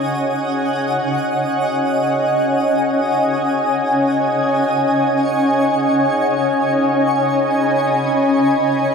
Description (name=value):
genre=ambient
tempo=free time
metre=none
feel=none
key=unclear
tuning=A4 = 438 Hz
part: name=granular cloud pad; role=sustained chords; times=0.0-8.9 s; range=C#4 to B5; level=-15 LUFS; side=equal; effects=built-in reverb
part: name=twinkling granular texture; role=texture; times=0.0-8.9 s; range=C#5 to D#6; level=-31 LUFS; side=right 1 dB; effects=built-in reverb, lush chorus
room=wet huge ambient reverb, RT60 7.3 s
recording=dreamy mix soaked in reverb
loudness=-15 LUFS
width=side -5 dB against mid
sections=0.0-8.9 A section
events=none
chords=0.0 C#sus2; 4.8 G#m/C#